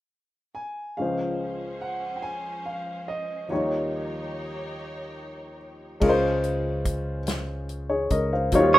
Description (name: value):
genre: slow gospel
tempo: 48 BPM (dotted quarters)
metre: 6/8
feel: straight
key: Db major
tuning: A4 = 439 Hz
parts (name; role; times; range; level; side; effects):
- clear concert grand piano; melody; 0.5-5.6 s; Db5 to Ab5; -34 LUFS; right 1 dB; plate reverb
- warm upright piano; accompaniment; 1.0-8.8 s; Db2 to F5; -25 LUFS; left 1 dB; plate reverb
- clear studio string section; sustained chords; 1.0-6.0 s; F3 to Db5; -40 LUFS; equal; plate reverb
- fingered electric bass; bass; 6.0-8.8 s; Db2 to Eb2; -29 LUFS; equal; none
- natural country drum kit; drums; 6.0-8.7 s; crash cymbal, hi-hat, kick drum, snare drum; -29 LUFS; equal; none
- clean electric guitar; second line; 8.7-8.8 s; Bb4 to Db5; -11 LUFS; right 4 dB; spring reverb
room: moderate studio reverb, RT60 0.6 s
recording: rough home demo mix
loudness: -25 LUFS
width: side -14 dB against mid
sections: 1.0-6.0 A section; 6.0-8.8 B section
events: none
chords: 0.0 N.C.; 1.0 Dbmaj7; 3.5 Eb9; 6.0 Dbmaj7